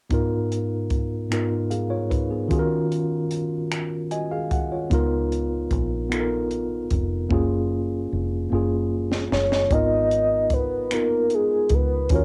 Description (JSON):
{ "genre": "slow six-eight R&B", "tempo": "50 BPM (dotted quarters)", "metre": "6/8", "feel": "straight", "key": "G# dorian", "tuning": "A4 = 441 Hz", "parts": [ { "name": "mellow tine electric piano", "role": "accompaniment", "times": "0.1-12.2 s", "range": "G#2 to G#5", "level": "-27 LUFS", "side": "equal", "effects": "overdrive, cassette tape, plate reverb" }, { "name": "compact cocktail drum kit", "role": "drums", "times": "0.1-12.2 s", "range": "finger snaps, hi-hat, kick drum, snare drum", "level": "-28 LUFS", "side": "equal", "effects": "cassette tape" }, { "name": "deep dub fingered electric bass", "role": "bass", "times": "4.9-12.2 s", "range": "E#1 to D#2", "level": "-29 LUFS", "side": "equal", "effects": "none" }, { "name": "soft octave-layered synth lead", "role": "melody", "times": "9.3-12.2 s", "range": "G#4 to D#5", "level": "-24 LUFS", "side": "equal", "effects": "chorus, tremolo, cassette tape" } ], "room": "light reverb", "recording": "home recording on cassette", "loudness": "-24 LUFS", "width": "mono", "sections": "0.1-9.7 A section; 9.7-12.2 B section", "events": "tine electric piano fill 3.7-4.9; drum fill 7.3-9.7", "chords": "0.1 G#m69; 2.5 D#m9; 4.9 C#13; 7.3 F#maj9; 9.7 G#m69", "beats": "| 0.11 1.31 | 2.51 3.71 | 4.91 6.11 | 7.31 8.51 | 9.71 10.91 | 12.11" }